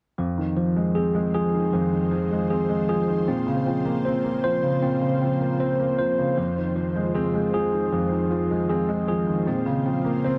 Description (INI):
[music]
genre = hip hop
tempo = 155 BPM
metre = 4/4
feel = half-time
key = F minor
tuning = A4 = 439 Hz
[part]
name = dark concert grand piano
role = accompaniment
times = 0.2-10.4 s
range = F2 to C4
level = -28 LUFS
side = equal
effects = low-pass filter
[part]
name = ethereal airy pad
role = sustained chords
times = 0.7-10.4 s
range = Db3 to C5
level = -34 LUFS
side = equal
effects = ensemble chorus, built-in reverb
[part]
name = mellow tine electric piano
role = arpeggios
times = 0.2-10.4 s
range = F3 to C5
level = -26 LUFS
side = equal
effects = low-pass filter, delay
[sound]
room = moderate huge ambient reverb, RT60 7.8 s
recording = none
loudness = -24 LUFS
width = mono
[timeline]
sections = 0.2-10.4 A section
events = none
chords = 0.2 Fm7; 3.3 Bbmadd9; 6.4 Fm7; 9.5 Bbmadd9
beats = | 0.18 0.57 0.95 1.34 | 1.73 2.12 2.50 2.89 | 3.28 3.66 4.05 4.44 | 4.83 5.21 5.60 5.99 | 6.37 6.76 7.15 7.54 | 7.92 8.31 8.70 9.08 | 9.47 9.86 10.24